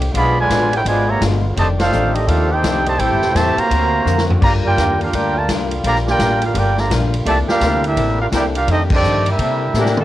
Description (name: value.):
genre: jazz, big band swing.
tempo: 169 BPM.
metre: 4/4.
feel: swing 64% on 8ths.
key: F major.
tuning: A4 = 439 Hz.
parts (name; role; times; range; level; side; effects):
hollow-body jazz guitar; accompaniment; 0.0-10.0 s; F2 to A#4; -25 LUFS; left 8 dB; cassette tape.
mellow trombone section; sustained chords; 0.0-10.0 s; D3 to D5; -27 LUFS; equal; none.
upright bass; bass; 0.0-10.0 s; E1 to C3; -19 LUFS; equal; none.
swinging big-band drum kit; drums; 0.0-10.0 s; crash cymbal, hi-hat, kick drum, ride cymbal, snare drum, toms; -22 LUFS; equal; cassette tape.
bright trombone section; second line; 0.1-10.0 s; Bb2 to G4; -24 LUFS; right 6 dB; cassette tape.
warm trumpet section; melody; 0.2-10.0 s; C4 to B5; -18 LUFS; right 1 dB; none.
mellow saxophone section; melody; 9.8-10.0 s; E3 to A4; -17 LUFS; left 2 dB; none.
room: small room ambience.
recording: home recording on cassette.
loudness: -14 LUFS.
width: side -14 dB against mid.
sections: 0.0-10.0 A section.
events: band accent 1.7, 8.9; drum fill 4.1-4.4, 9.7-10.0.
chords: 0.1 Bdim7; 1.6 F13; 3.0 Am7; 3.7 D7alt; 4.4 Gm7; 7.3 C13; 8.7 F13; 9.4 C13.